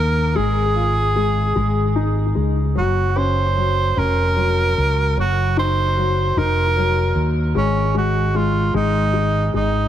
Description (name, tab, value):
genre	six-eight pop ballad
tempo	50 BPM (dotted quarters)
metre	6/8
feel	straight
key	unclear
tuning	A4 = 440 Hz
part	breathy tenor saxophone	melody	0.0-9.9 s	Db4 to C5	-20 LUFS	right 3 dB	tape echo
part	warm upright piano	accompaniment	0.0-9.9 s	Eb3 to F4	-23 LUFS	left 5 dB	tape echo
part	mellow fretless electric bass	bass	0.0-9.9 s	F1 to Eb2	-19 LUFS	equal	analog chorus
room	small room ambience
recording	echo-heavy mix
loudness	-16 LUFS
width	side -11 dB against mid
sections	0.0-9.9 A section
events	none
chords	0.4 Fm/Ab; 1.6 Ab5; 2.8 Gb; 5.2 Ebmadd9/Gb; 7.5 Ab5